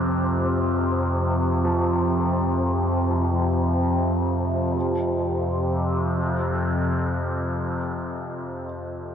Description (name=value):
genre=dark ambient drone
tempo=free time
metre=none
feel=none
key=unclear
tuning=A4 = 440 Hz
part: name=warm grand piano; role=arpeggios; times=0.0-9.1 s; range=F3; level=-31 LUFS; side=equal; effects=ping-pong delay
part: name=overtone-sweeping drone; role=drone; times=0.0-8.6 s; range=F2 to C3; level=-22 LUFS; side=equal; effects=chorus, built-in reverb
part: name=wind-like tuned noise texture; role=texture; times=0.0-4.8 s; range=C4 to C5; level=-34 LUFS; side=equal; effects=built-in reverb
room=wet cathedral reverb, RT60 4.7 s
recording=worn, warbling old tape, cassette tape, warbly pitch drift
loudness=-21 LUFS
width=side -8 dB against mid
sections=0.0-4.8 A section; 4.8-8.5 B section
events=none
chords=0.0 Csus4; 4.8 F5